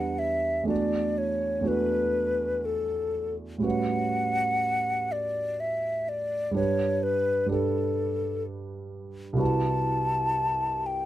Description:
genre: classical, impressionist duo for flute and grand piano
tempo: 62 BPM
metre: 3/4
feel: uneven beats, rubato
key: unclear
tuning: A4 = 440 Hz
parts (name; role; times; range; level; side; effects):
- mellow hollow concert flute; melody; 0.0-11.1 s; A4 to A5; -27 LUFS; left 2 dB; none
- clear grand piano; accompaniment; 0.0-11.1 s; C2 to B4; -29 LUFS; right 3 dB; none
room: little or no reverb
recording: close, detailed microphones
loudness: -25 LUFS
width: side -13 dB against mid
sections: 0.0-11.1 A section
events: none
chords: 0.0 Gmaj7/E; 0.7 D69/E; 3.6 A13; 6.6 Gadd9; 9.4 Cmaj7#11

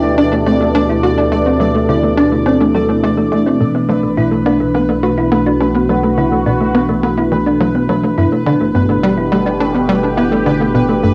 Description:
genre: ambient, sequencer-driven space music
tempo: 105 BPM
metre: 4/4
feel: straight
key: unclear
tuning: A4 = 442 Hz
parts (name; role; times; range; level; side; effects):
- sweeping resonant pad; sustained chords; 0.0-11.1 s; B2 to G4; -19 LUFS; equal; chorus, cassette tape
- thumb-piano-like synth pluck; arpeggios; 0.0-11.1 s; A3 to A4; -18 LUFS; equal; chorus, cassette tape, tape echo
- tight sequencer bass; riff; 0.0-11.1 s; G2 to F#4; -20 LUFS; equal; subtle chorus, cassette tape, tape echo
- warm sub bass; bass; 0.0-11.1 s; G1 to D2; -28 LUFS; equal; none
- pulsing gated texture; texture; 0.0-11.1 s; B4 to D5; -24 LUFS; equal; chorus, built-in reverb, cassette tape
room: wet small room reverb, RT60 0.5 s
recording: home recording on cassette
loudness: -14 LUFS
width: mono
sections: 0.0-11.1 A section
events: none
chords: 0.0 Dsus4; 3.6 Bm7; 8.2 G6

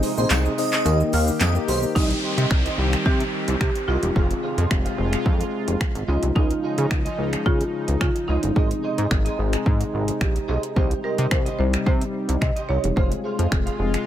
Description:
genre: dance-pop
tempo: 109 BPM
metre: 4/4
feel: straight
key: unclear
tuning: A4 = 441 Hz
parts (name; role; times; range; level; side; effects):
- mellow tine electric piano; accompaniment; 0.0-14.1 s; G3 to Eb5; -28 LUFS; left 5 dB; medium stereo tremolo, sidechain pumping
- sweeping resonant pad; sustained chords; 0.0-14.1 s; C3 to G4; -31 LUFS; right 2 dB; chorus, sidechain pumping
- electric guitar at the edge of break-up; riff; 0.0-14.0 s; F4 to F5; -32 LUFS; right 5 dB; ensemble chorus
- chorused synth bass; bass; 0.0-14.0 s; E1 to Db3; -23 LUFS; equal; sidechain pumping
- pop drum kit; drums; 0.0-14.1 s; crash cymbal, finger snaps, handclaps, hi-hat, kick drum, shaker, snare drum; -23 LUFS; equal; overdrive
- tambourine; percussion; 0.0-1.8 s; none; -38 LUFS; right 13 dB; none
- airy dreamy lead; melody; 0.2-1.8 s; C5 to F5; -28 LUFS; equal; chorus, sidechain pumping, ping-pong delay
- marimba with medium mallets; melody; 2.0-14.0 s; Eb4 to Eb5; -29 LUFS; right 2 dB; ping-pong delay
- downlifter; sound effects; 2.0-6.4 s; none; -32 LUFS; equal; none
room: digital ambience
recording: none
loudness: -19 LUFS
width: side -11 dB against mid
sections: 0.0-2.0 A section; 2.0-14.1 B section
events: break 0.0-2.0; drop 0.0-2.0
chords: 0.0 Ab; 0.9 Eb; 2.0 Cm; 4.2 Fm; 6.1 Dbadd9; 8.6 Ab; 10.8 Cm; 13.0 Fm

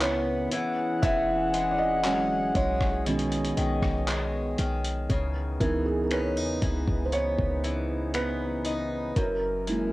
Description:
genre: contemporary R&B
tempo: 59 BPM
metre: 4/4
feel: straight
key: C# dorian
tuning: A4 = 440 Hz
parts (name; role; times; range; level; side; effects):
- felt-muted upright piano; accompaniment; 0.0-9.9 s; D#3 to E5; -30 LUFS; right 2 dB; none
- warm brass ensemble; sustained chords; 0.0-9.9 s; C#3 to F#5; -31 LUFS; left 1 dB; none
- picked swing-style acoustic guitar; arpeggios; 0.0-9.9 s; F#2 to D#4; -32 LUFS; left 1 dB; analog delay
- warm 808-style bass; bass; 0.0-9.9 s; E1 to E2; -32 LUFS; equal; none
- dusty soul sampler-style drum kit; drums; 0.0-9.9 s; finger snaps, handclaps, hi-hat, kick drum, rim click; -30 LUFS; equal; overdrive, cassette tape
room: small room ambience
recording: home recording on cassette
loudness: -24 LUFS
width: side -18 dB against mid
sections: 0.0-5.1 A section; 5.1-9.9 B section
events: felt piano solo 0.0-5.1, 5.1-9.9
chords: 0.0 C#m9; 0.5 E69; 3.1 B69; 5.1 C#m9; 9.2 F#7

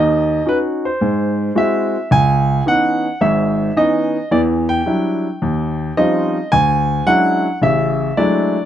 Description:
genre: jazz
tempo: 109 BPM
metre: 4/4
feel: swing 67% on 8ths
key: C# minor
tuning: A4 = 438 Hz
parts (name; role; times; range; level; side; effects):
- warm baby grand piano; solo; 0.0-8.7 s; G#1 to G#5; -14 LUFS; equal; none
room: moderate club reverb, RT60 0.6 s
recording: none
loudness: -14 LUFS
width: side -10 dB against mid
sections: 0.0-2.1 A section; 2.1-8.7 B section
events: none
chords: 0.0 D#m7; 1.0 G#aug7; 2.1 C#m9; 4.3 Em9; 5.4 D#13; 6.5 Dmaj9#11

